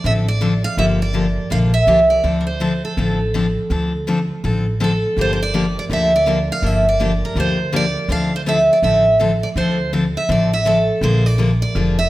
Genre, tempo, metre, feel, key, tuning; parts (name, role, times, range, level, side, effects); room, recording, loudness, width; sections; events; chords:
acoustic string swing (jazz manouche); 164 BPM; 4/4; swing 62% on 8ths; D minor; A4 = 436 Hz
picked steel-string acoustic guitar; melody; 0.0-12.1 s; A4 to F5; -18 LUFS; right 2 dB
picked steel-string acoustic guitar; accompaniment; 0.0-12.0 s; D3 to A4; -20 LUFS; left 2 dB
upright bass; bass; 0.0-12.1 s; F1 to D2; -21 LUFS; equal
wet recital hall reverb, RT60 1.4 s; -15 LUFS; side -16 dB against mid
0.0-12.1 A section
0.0 Dm7; 0.8 Gm7; 2.2 Dm7; 5.2 Gm7; 8.1 Dm9; 11.0 Bb7